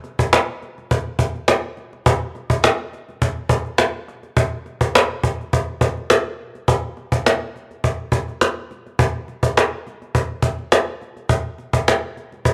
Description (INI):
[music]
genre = indie pop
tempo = 104 BPM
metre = 4/4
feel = swing 55% on 16ths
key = none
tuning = none
[part]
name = cajon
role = drums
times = 0.0-12.5 s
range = none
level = -19 LUFS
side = equal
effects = none
[sound]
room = light reverb, small room ambience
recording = rough home demo mix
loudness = -20 LUFS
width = mono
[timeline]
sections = 0.0-6.7 A section; 6.7-12.5 B section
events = none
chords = none